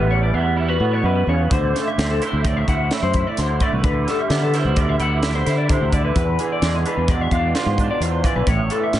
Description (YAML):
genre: math rock and midwest emo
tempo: 129 BPM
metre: 5/4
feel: straight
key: G major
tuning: A4 = 440 Hz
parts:
  - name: electric guitar through a small old amp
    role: accompaniment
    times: 0.0-9.0 s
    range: E2 to F#4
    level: -23 LUFS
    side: right 6 dB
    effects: ensemble chorus, tape echo
  - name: electric guitar through a small old amp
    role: arpeggios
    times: 0.0-9.0 s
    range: G#4 to F#5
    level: -24 LUFS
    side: left 7 dB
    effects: wide subtle chorus
  - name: fingered electric bass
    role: bass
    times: 0.0-9.0 s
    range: A1 to D3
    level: -20 LUFS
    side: equal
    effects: none
  - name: crisp fusion drum kit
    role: drums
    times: 1.5-9.0 s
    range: hi-hat, kick drum, snare drum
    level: -23 LUFS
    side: equal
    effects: none
room: studio reverb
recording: echo-heavy mix, nothing above 10.7 kHz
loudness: -17 LUFS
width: side -12 dB against mid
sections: 0.0-9.0 A section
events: none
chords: 0.0 A13; 1.5 D9; 3.8 G6/D; 6.2 E7b9; 8.5 A